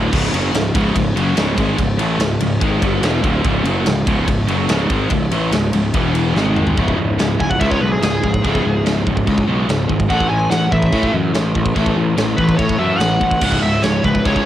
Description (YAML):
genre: heavy metal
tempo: 144 BPM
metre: 4/4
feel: straight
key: C# minor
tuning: A4 = 440 Hz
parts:
  - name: crunchy overdriven guitar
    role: riff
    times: 0.0-14.5 s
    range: C#2 to A4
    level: -24 LUFS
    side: equal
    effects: cassette tape
  - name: distorted electric guitar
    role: riff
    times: 0.0-14.4 s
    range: C#2 to A3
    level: -22 LUFS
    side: left 6 dB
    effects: distortion, cassette tape
  - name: scooped high-gain guitar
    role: riff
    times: 0.0-14.5 s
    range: C#2 to A3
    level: -24 LUFS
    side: right 8 dB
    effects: distortion, cassette tape
  - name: fuzz picked electric bass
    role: bass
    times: 0.0-14.4 s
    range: C#1 to A2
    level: -19 LUFS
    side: equal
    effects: overdrive
  - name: big rock drum kit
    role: drums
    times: 0.1-14.5 s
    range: china cymbal, crash cymbal, kick drum, ride cymbal, snare drum, toms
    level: -21 LUFS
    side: equal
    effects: cassette tape
  - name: smooth overdriven lead guitar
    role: melody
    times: 7.4-14.5 s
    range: G#4 to G#5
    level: -20 LUFS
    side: equal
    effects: cassette tape
room: little or no reverb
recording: home recording on cassette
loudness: -14 LUFS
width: side -12 dB against mid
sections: 0.0-6.8 A section; 6.8-14.5 B section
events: drum fill 6.4-6.8; lead electric guitar solo 6.8-14.5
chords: 0.0 C#m; 5.9 E5; 6.4 G#5; 6.8 C#m; 10.1 A; 13.4 C#m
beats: | 0.13 0.54 0.96 1.37 | 1.79 2.20 2.62 3.04 | 3.45 3.87 4.28 4.70 | 5.11 5.53 5.94 6.36 | 6.78 7.19 7.61 8.02 | 8.44 8.85 9.27 9.69 | 10.10 10.52 10.93 11.35 | 11.76 12.18 12.59 13.01 | 13.42 13.84 14.25